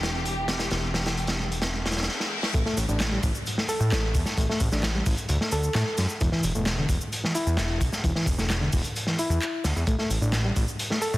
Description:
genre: breakbeat, breaks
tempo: 131 BPM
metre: 4/4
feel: straight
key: E minor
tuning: A4 = 441 Hz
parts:
  - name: warm studio string section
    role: sustained chords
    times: 0.0-2.1 s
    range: E3 to G4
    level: -33 LUFS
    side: equal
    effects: sidechain pumping
  - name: fat analog bass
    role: bass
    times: 0.0-11.2 s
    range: E1 to A2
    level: -26 LUFS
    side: equal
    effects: none
  - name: crunchy breakbeat drum kit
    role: drums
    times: 0.0-11.1 s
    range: hi-hat, kick drum, snare drum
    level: -27 LUFS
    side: equal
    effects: high-pass filter on kick, high-pass filter on hats, high-pass filter on snare, high-pass filter on room
  - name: congas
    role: percussion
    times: 0.1-2.1 s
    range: none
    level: -38 LUFS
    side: right 2 dB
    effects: none
  - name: reverse cymbal and downlifter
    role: sound effects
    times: 1.8-6.2 s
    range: none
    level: -37 LUFS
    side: left 2 dB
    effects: none
  - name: overdriven reed electric piano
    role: riff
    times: 2.5-11.2 s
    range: D3 to A4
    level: -30 LUFS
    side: equal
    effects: vintage 12-bit sampler grit, digital delay
  - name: garage drum kit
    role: drums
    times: 2.5-11.2 s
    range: handclaps, hi-hat, shaker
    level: -35 LUFS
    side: equal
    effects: overdrive
room: light reverb, studio reverb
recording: dense, heavily limited modern master, vinyl crackle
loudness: -23 LUFS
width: side -17 dB against mid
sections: 0.0-2.5 A section; 2.5-11.2 B section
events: filter sweep on string section 0.0-2.5; reverse cymbal 1.8-2.5; drum fill 2.1-2.5; drop 2.5-11.2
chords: 0.0 Em7; 2.5 Asus4; 6.2 E5; 9.9 N.C.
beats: 0.26 | 0.71 1.17 1.63 2.09 | 2.55 3.00 3.46 3.92 | 4.38 4.84 5.29 5.75 | 6.21 6.67 7.13 7.58 | 8.04 8.50 8.96 9.42 | 9.87 10.33 10.79

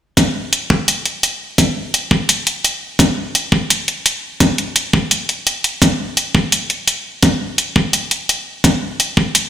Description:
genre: half-time drum and bass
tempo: 170 BPM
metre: 4/4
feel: swing 58% on 16ths, half-time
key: none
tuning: none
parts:
  - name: electronic hi-hat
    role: drums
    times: 0.2-9.4 s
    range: none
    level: -16 LUFS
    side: equal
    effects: studio reverb
  - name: electronic kick drum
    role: drums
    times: 0.2-9.3 s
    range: none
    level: -14 LUFS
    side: equal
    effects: high-pass filter on kick, studio reverb
room: light reverb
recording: played on a big sound system in a bare room, stone room reverb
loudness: -14 LUFS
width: side -10 dB against mid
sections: 0.2-9.5 A section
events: none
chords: none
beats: | 0.17 0.53 0.88 1.23 | 1.58 1.94 2.29 2.64 | 3.00 3.35 3.70 4.05 | 4.41 4.76 5.11 5.47 | 5.82 6.17 6.53 6.88 | 7.23 7.58 7.94 8.29 | 8.64 8.99 9.35

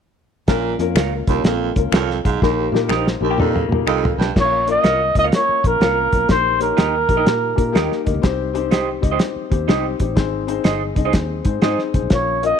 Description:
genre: uptempo 1960s-style soul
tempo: 124 BPM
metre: 4/4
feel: swing 65% on 8ths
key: Bb dorian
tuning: A4 = 440 Hz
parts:
  - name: dark upright piano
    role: accompaniment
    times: 0.5-12.6 s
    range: Bb3 to Bb5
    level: -23 LUFS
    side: left 12 dB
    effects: none
  - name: raspy baritone saxophone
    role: riff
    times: 0.5-4.3 s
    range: Eb2 to Bb2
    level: -23 LUFS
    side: right 12 dB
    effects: none
  - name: fingered electric bass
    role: bass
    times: 0.5-12.5 s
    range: G1 to Bb2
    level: -24 LUFS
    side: equal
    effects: none
  - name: cloth-damped thuddy drum kit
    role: drums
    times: 0.5-12.5 s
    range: crash cymbal, hi-hat, kick drum, snare drum, toms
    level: -19 LUFS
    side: equal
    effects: none
  - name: electric guitar through a small old amp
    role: stabs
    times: 1.0-11.8 s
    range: Eb4 to F5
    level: -25 LUFS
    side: right 12 dB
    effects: none
  - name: finger snaps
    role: percussion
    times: 1.0-4.0 s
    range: none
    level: -26 LUFS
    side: left 14 dB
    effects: none
  - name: electric guitar through a small old amp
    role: riff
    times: 3.3-4.2 s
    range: Db3 to G4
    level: -25 LUFS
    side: left 14 dB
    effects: vibrato effect
  - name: dark trumpet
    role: melody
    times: 4.4-8.0, 12.1-12.6 s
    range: Bb4 to Eb5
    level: -17 LUFS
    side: right 1 dB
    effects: none
room: light reverb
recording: 1960s-style stereo with parts hard left and right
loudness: -16 LUFS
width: side -7 dB against mid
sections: 0.5-4.4 A section; 4.4-12.6 B section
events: drum fill 2.4-4.4; upright piano fill 7.3-8.2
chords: 0.5 Bbm; 2.4 Eb/Bb; 4.4 Bbm; 6.3 Eb/Bb; 8.2 Cm; 10.2 Ab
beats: | 0.48 0.97 1.45 1.93 | 2.42 2.90 3.39 3.87 | 4.36 4.84 5.33 5.81 | 6.29 6.78 7.26 7.75 | 8.23 8.72 9.20 9.69 | 10.17 10.66 11.14 11.63 | 12.11

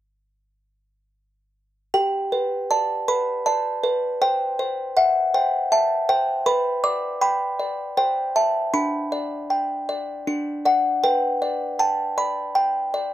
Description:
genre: classical, lullaby for music box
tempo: 79 BPM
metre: 3/4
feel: straight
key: G major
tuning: A4 = 441 Hz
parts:
  - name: music box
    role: solo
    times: 1.9-13.1 s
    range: D4 to D6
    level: -20 LUFS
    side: equal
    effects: none
room: little or no reverb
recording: dry, close 1970s-style studio recording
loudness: -20 LUFS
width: side -13 dB against mid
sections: 1.9-13.1 A section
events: none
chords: 1.9 G; 4.2 C; 6.5 G/B; 8.0 Am7/C; 8.7 G/D; 10.3 D; 11.0 G/B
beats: | 1.94 2.70 3.45 | 4.21 4.96 5.71 | 6.47 7.22 7.98 | 8.74 9.50 10.27 | 11.04 11.80 12.56

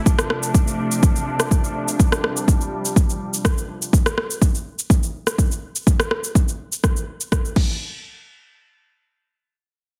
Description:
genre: afro house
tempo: 124 BPM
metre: 4/4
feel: straight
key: D minor pentatonic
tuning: A4 = 440 Hz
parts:
  - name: bright symphonic string section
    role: sustained chords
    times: 0.0-3.9 s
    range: C3 to D4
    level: -28 LUFS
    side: equal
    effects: sidechain pumping, low-pass filter
  - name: deep house drum kit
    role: drums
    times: 0.1-7.7 s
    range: cabasa, crash cymbal, rim click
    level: -26 LUFS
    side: equal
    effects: overdrive
  - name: electronic kick drum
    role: drums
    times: 0.1-7.7 s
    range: none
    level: -19 LUFS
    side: equal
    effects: overdrive
room: little or no reverb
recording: heavily compressed radio sound, multiband compression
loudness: -20 LUFS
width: mono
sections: 0.0-7.8 A section; 7.8-10.0 B section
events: filter sweep on string section 0.0-3.9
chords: 0.1 Dm7; 3.9 N.C.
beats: | 0.06 0.55 1.03 1.51 | 2.00 2.48 2.96 3.45 | 3.93 4.42 4.90 5.38 | 5.87 6.35 6.83 7.32

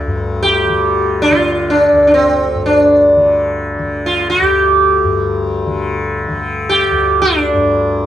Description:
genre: indian classical, Hindustani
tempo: free time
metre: none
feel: none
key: unclear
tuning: A4 = 438 Hz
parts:
  - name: tanpura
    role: drone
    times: 0.0-8.1 s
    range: D2 to D3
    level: -19 LUFS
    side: left 2 dB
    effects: none
  - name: sitar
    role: melody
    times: 0.4-8.1 s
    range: C4 to G4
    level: -11 LUFS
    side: right 1 dB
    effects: none
room: light reverb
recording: dark, warm production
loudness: -11 LUFS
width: side -11 dB against mid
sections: 0.1-8.1 A section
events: none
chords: none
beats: free time

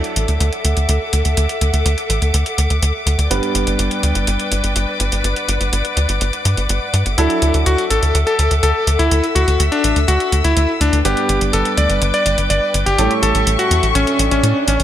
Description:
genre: italo disco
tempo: 124 BPM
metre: 4/4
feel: straight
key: unclear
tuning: A4 = 441 Hz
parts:
  - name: rich chamber string section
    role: sustained chords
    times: 0.0-14.8 s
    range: A4 to E6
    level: -22 LUFS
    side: left 2 dB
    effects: none
  - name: bright baby grand piano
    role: stabs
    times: 0.0-14.8 s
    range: G2 to B4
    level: -24 LUFS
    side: right 4 dB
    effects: none
  - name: tight sequencer bass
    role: bass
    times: 0.0-14.8 s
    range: G1 to A2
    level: -16 LUFS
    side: equal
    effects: none
  - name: electronic hi-hat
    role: drums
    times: 0.0-14.8 s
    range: none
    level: -22 LUFS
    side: equal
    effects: overdrive
  - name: bright electric grand piano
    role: melody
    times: 7.2-14.8 s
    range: C#4 to D5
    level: -17 LUFS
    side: left 2 dB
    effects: vintage 12-bit sampler grit, digital delay
  - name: swell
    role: sound effects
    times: 14.2-14.8 s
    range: none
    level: -22 LUFS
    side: right 1 dB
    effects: none
room: moderate plate reverb, RT60 1.5 s, studio reverb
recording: bright 1980s-style digital production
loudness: -14 LUFS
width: side -11 dB against mid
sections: 0.0-14.8 A section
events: swell 14.2-14.8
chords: 0.0 Dadd9; 3.3 G; 7.2 Dadd9; 11.0 G; 13.0 A7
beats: 0.40 0.89 | 1.37 1.85 2.34 2.82 | 3.31 3.79 4.28 4.76 | 5.24 5.73 6.21 6.69 | 7.18 7.66 8.15 8.63 | 9.11 9.60 10.08 10.56 | 11.05 11.53 12.02 12.50 | 12.98 13.47 13.95 14.44

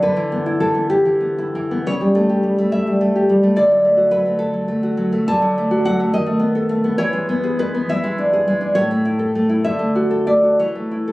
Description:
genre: romantic piece for solo classical guitar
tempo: 59-73 BPM (dotted quarters)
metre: 6/8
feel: rubato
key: D major, A major from 5.3 s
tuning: A4 = 441 Hz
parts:
  - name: nylon-string guitar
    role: solo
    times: 0.0-11.1 s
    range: A2 to A5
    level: -15 LUFS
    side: equal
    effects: none
room: light reverb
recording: recorded on a phone in the room, club reverb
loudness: -15 LUFS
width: side -19 dB against mid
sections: 0.0-11.1 A section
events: none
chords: 0.0 Em7/D; 1.8 A7/C#; 3.6 D; 6.1 B7/D#; 7.0 E; 7.9 E7; 8.7 A; 9.6 D; 10.6 A/E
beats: | 0.03 0.90 | 1.84 2.70 | 3.55 4.38 | 5.28 6.12 | 6.97 7.88 | 8.75 9.63 | 10.58

